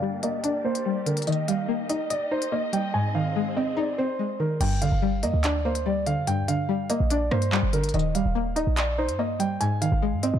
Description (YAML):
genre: hip hop, drill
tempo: 144 BPM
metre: 4/4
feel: half-time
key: G phrygian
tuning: A4 = 440 Hz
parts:
  - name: dark concert grand piano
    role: melody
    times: 0.0-10.4 s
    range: Bb4 to Ab5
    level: -29 LUFS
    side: right 2 dB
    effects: low-pass filter, ping-pong delay
  - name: string-like resonator pluck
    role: accompaniment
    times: 0.0-10.4 s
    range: G2 to Eb5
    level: -26 LUFS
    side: left 1 dB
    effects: chorus, low-pass filter
  - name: dark symphonic string section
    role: sustained chords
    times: 0.0-4.6 s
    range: Bb3 to Eb5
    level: -35 LUFS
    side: equal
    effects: low-pass filter
  - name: drill drum kit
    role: drums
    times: 0.2-10.3 s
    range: crash cymbal, handclaps, hi-hat, rim click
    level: -32 LUFS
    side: equal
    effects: none
  - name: short 808-style bass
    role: bass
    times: 4.6-10.4 s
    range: D1 to Ab2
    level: -26 LUFS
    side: right 1 dB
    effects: none
room: little or no reverb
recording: dark, warm production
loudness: -23 LUFS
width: side -9 dB against mid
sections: 0.0-4.6 A section; 4.6-10.4 B section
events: filter sweep 0.0-4.6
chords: 0.0 Gm; 1.3 Eb; 2.9 Ab; 4.6 Gm; 7.9 Eb; 9.6 Ab